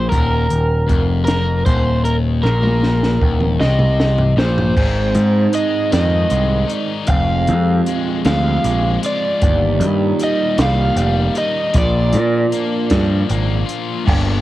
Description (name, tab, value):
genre	indie rock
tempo	52 BPM (dotted quarters)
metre	6/8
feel	straight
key	Eb major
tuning	A4 = 440 Hz
part	overdriven semi-hollow guitar	melody	0.0-13.7 s	Bb4 to F5	-20 LUFS	equal	cassette tape
part	cranked stack guitar	riff	0.0-14.4 s	Eb2 to G4	-22 LUFS	left 6 dB	overdrive, cassette tape
part	electric guitar through a small old amp	riff	0.0-14.4 s	Eb2 to F4	-23 LUFS	right 7 dB	analog chorus, cassette tape
part	growling picked electric bass	bass	0.0-14.4 s	Eb1 to Bb2	-17 LUFS	equal	overdrive
part	compact cocktail drum kit	drums	0.1-14.3 s	crash cymbal, hi-hat, kick drum, snare drum, toms	-19 LUFS	equal	cassette tape
room	little or no reverb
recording	home recording on cassette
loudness	-14 LUFS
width	side -15 dB against mid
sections	0.0-4.8 A section; 4.8-14.1 B section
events	drum fill 2.4-4.8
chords	0.0 Eb; 4.8 Ab; 7.1 Fm; 9.4 Eb/G; 11.7 Bb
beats	| 0.11 1.27 | 2.44 3.60 | 4.77 5.93 | 7.09 8.26 | 9.42 10.59 | 11.75 12.91 | 14.07